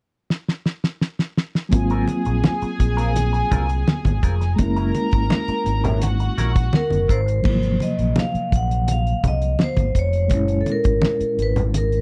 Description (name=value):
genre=lush 1970s-style soul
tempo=84 BPM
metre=4/4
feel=straight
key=unclear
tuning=A4 = 440 Hz
part: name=damped 70s drum kit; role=drums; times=0.3-12.0 s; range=crash cymbal, hi-hat, kick drum, snare drum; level=-22 LUFS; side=equal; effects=none
part: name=dark studio string section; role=second line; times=1.7-7.1 s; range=Gb4 to Bb5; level=-30 LUFS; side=equal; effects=none
part: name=reed electric piano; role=accompaniment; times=1.7-12.0 s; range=Bb2 to F4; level=-28 LUFS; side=equal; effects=fast tremolo
part: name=electric guitar through a small old amp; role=riff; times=1.7-7.3 s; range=Gb3 to Bb4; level=-34 LUFS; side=equal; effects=wah
part: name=overdriven fingered electric bass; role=bass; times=1.7-12.0 s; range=F1 to C2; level=-24 LUFS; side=equal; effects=none
part: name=congas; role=percussion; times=1.7-11.9 s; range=none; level=-28 LUFS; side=equal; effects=none
part: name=vibraphone with hard mallets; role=melody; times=6.8-12.0 s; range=A4 to Gb5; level=-26 LUFS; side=equal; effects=tape echo
room=little or no reverb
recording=dry, close 1970s-style studio recording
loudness=-20 LUFS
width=mono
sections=0.0-1.7 A section; 1.7-7.5 B section; 7.5-12.0 C section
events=drum fill 0.3-1.7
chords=0.0 N.C.; 1.7 Ab13; 4.6 Gb7; 7.1 Ab69; 7.5 Ab13; 10.3 Gb7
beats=0.30 1.01 | 1.73 2.44 3.16 3.87 | 4.59 5.31 6.02 6.74 | 7.45 8.17 8.88 9.60 | 10.31 11.03 11.74